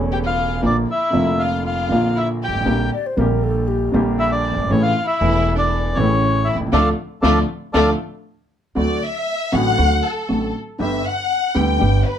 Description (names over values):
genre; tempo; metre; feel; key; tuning
tango; 118 BPM; 4/4; rubato; D minor, D major from 8.8 s; A4 = 440 Hz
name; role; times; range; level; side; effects
warm concert grand piano; accompaniment; 0.0-12.0 s; E1 to G4; -20 LUFS; equal; none
upright bass; bass; 0.0-12.0 s; E1 to D2; -22 LUFS; right 1 dB; none
bandoneon; melody; 0.1-7.9 s; A4 to G5; -21 LUFS; left 1 dB; none
warm studio violin section; second line; 0.1-12.2 s; A3 to G5; -24 LUFS; left 3 dB; none
mellow hollow concert flute; second line; 2.9-7.9 s; G4 to D5; -23 LUFS; left 3 dB; none
room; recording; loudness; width
light reverb; none; -16 LUFS; side -9 dB against mid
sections
0.0-8.8 A section; 8.8-12.2 B section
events
band accent 6.7-8.8; violin section solo 8.8-12.2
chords
0.0 A; 0.6 Bb; 2.7 Gm/Bb; 4.7 A; 6.7 Dm; 8.8 D; 10.8 G